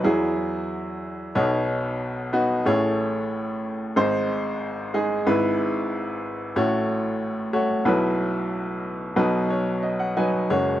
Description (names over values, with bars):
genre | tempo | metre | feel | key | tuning
folk | 92 BPM | 4/4 | straight | unclear | A4 = 440 Hz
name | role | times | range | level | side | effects
bright upright piano | solo | 0.0-10.8 s | F#1 to G#5 | -22 LUFS | equal | slapback echo
room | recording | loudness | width
little or no reverb | recorded outdoors, with no room sound | -22 LUFS | side -13 dB against mid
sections
0.0-10.5 A section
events
none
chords
0.0 Eadd9; 1.3 Badd9; 2.7 Amaj7; 4.0 G#; 5.3 E/G#; 6.6 F#m/A; 7.9 Bsus4; 9.2 B